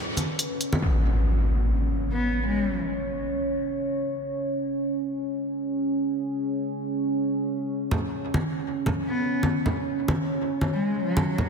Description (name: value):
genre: deep dubstep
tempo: 138 BPM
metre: 4/4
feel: swing 59% on 16ths, half-time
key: unclear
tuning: A4 = 438 Hz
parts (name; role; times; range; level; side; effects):
- deep dark ambient pad; sustained chords; 0.0-11.5 s; C#4 to C#5; -28 LUFS; right 2 dB; chorus, built-in reverb
- electronic hi-hat; drums; 0.2-0.7 s; none; -29 LUFS; equal; studio reverb
- congas; percussion; 0.2-0.8, 7.9-11.5 s; none; -27 LUFS; equal; dub echo
- impact and riser; sound effects; 0.8-2.6, 11.3-11.5 s; none; -25 LUFS; equal; none
- warm cello; melody; 2.1-2.8, 9.1-11.4 s; F#3 to B3; -28 LUFS; left 2 dB; dub echo
room: moderate lush hall reverb, RT60 1.9 s, digital ambience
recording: dense, heavily limited modern master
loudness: -24 LUFS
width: side -5 dB against mid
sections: 0.8-11.5 A section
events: impact 0.8-2.6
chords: 0.0 N.C.; 0.8 C#5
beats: 0.39 | 0.82 1.26 1.69 2.13 | 2.56 3.00 3.43 3.87 | 4.30 4.74 5.17 5.61 | 6.04 6.48 6.91 7.35 | 7.78 8.22 8.65 9.09 | 9.52 9.96 10.39 10.82 | 11.26